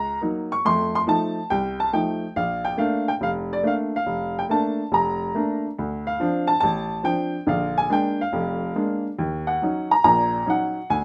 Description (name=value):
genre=solo jazz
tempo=141 BPM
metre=4/4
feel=swing 68% on 8ths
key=Bb major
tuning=A4 = 440 Hz
part: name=warm upright piano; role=solo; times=0.0-11.0 s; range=F1 to Db6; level=-23 LUFS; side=equal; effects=none
room=moderate club reverb, RT60 0.9 s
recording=none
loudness=-23 LUFS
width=mono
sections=0.0-5.8 A section; 5.8-11.0 B section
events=none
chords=0.0 Gb6; 0.7 F7; 2.4 Bbmaj7; 5.8 Dm7; 7.5 Bb7; 9.2 Ebm7